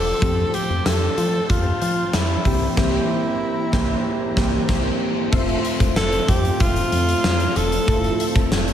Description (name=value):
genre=1980s-style pop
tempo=94 BPM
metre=4/4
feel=straight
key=F major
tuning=A4 = 440 Hz
part: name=clear alto saxophone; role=melody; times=0.0-8.5 s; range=E4 to A4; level=-24 LUFS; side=equal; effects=none
part: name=glassy digital keys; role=accompaniment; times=0.0-8.7 s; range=E3 to E5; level=-24 LUFS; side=equal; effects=chorus, slapback echo
part: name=soft string machine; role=sustained chords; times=0.0-8.7 s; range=F3 to Bb5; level=-31 LUFS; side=equal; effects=ensemble chorus
part: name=solid FM bass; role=bass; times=0.0-8.7 s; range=E1 to F3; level=-24 LUFS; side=equal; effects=none
part: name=big rock drum kit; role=drums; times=0.2-8.7 s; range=crash cymbal, hi-hat, kick drum, snare drum, tambourine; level=-22 LUFS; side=equal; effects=none
room=moderate lush hall reverb, RT60 1.8 s, small room reverb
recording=big arena sound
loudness=-18 LUFS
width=side -10 dB against mid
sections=0.0-5.3 A section; 5.3-8.7 B section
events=band accent 2.8-5.3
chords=0.2 Fadd9; 2.5 C7; 5.3 Fmaj7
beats=| 0.22 0.86 1.50 2.13 | 2.77 3.41 4.05 4.69 | 5.33 5.96 6.60 7.24 | 7.88 8.52